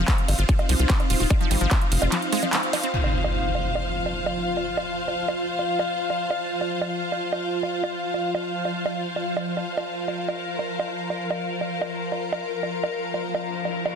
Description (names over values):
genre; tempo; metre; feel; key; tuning
psychedelic trance; 147 BPM; 4/4; straight; unclear; A4 = 440 Hz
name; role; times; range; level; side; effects
evolving wavetable pad; sustained chords; 0.0-14.0 s; F3 to Bb4; -29 LUFS; equal; ensemble chorus, built-in reverb, phaser, sidechain pumping
wide unison pluck; riff; 0.0-2.9 s; F3 to F4; -29 LUFS; equal; auto-pan, sidechain pumping, tape echo
tight sequencer bass; bass; 0.0-2.1 s; Eb1 to C2; -22 LUFS; equal; none
warm studio string section; texture; 0.0-14.0 s; F4 to F5; -29 LUFS; left 2 dB; sidechain pumping
big-room dance drum kit; drums; 0.1-13.9 s; bongos, crash cymbal, handclaps, hi-hat, ride cymbal; -28 LUFS; right 2 dB; low-pass filter on snare, small room ambience, low-pass filter on hats, low-pass filter on perc, low-pass filter on cymbals
electronic kick drum; drums; 0.1-1.8 s; none; -21 LUFS; equal; small room ambience
impact and riser; sound effects; 2.9-4.6, 13.0-14.0 s; none; -29 LUFS; equal; none
room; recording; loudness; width
light reverb, digital ambience; dense, heavily limited modern master; -22 LUFS; side -7 dB against mid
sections
0.0-2.9 A section; 2.9-14.0 B section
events
drop 0.0-2.9; band accent 2.5; impact 2.9-4.6; filter sweep on drum 2.9-14.0; filter sweep on ambient pad 2.9-14.0; riser 13.0-14.0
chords
0.0 F5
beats
0.08 0.49 0.90 | 1.30 1.71 2.12 2.53 | 2.94 3.35 3.75 4.16 | 4.57 4.98 5.39 5.79 | 6.20 6.61 7.02 7.43 | 7.83 8.24 8.65 9.06 | 9.47 9.88 10.28 10.69 | 11.10 11.51 11.92 12.32 | 12.73 13.14 13.55